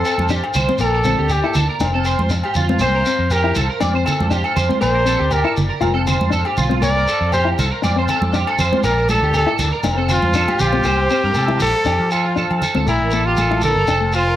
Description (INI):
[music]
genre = highlife guitar band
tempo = 119 BPM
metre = 4/4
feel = straight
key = unclear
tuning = A4 = 441 Hz
[part]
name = clear trumpet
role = melody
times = 0.0-14.4 s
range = E4 to D5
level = -19 LUFS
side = equal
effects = none
[part]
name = mellow electric guitar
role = accompaniment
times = 0.0-14.2 s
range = A3 to F4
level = -24 LUFS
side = left 7 dB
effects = none
[part]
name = mellow tonewheel organ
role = sustained chords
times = 0.0-14.4 s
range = Bb3 to Bb5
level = -29 LUFS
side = equal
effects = slow rotary speaker, chorus vibrato, plate reverb
[part]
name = electric guitar at the edge of break-up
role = arpeggios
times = 0.0-14.4 s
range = F4 to D5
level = -22 LUFS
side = right 5 dB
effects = ensemble chorus, analog delay
[part]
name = shekere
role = percussion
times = 0.0-14.2 s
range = none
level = -27 LUFS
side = left 1 dB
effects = none
[part]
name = agogo bells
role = percussion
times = 0.1-14.3 s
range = none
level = -26 LUFS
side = left 4 dB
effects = none
[part]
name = fingered electric bass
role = bass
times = 0.2-14.4 s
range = F1 to F3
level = -20 LUFS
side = equal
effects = none
[part]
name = congas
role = percussion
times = 0.2-13.8 s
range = none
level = -25 LUFS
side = right 2 dB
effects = none
[sound]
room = light reverb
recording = none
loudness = -15 LUFS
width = side -12 dB against mid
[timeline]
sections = 0.0-10.9 A section; 10.9-14.4 B section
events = trumpet solo 0.0-10.9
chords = 0.0 F; 0.8 Bbmaj7; 1.8 F; 2.8 C7sus4; 3.8 F; 4.8 Bbmaj7; 5.8 F; 6.8 C7sus4; 7.8 F; 8.8 Bbmaj7; 9.8 F; 10.9 C7sus4; 11.9 F; 12.9 Bbmaj7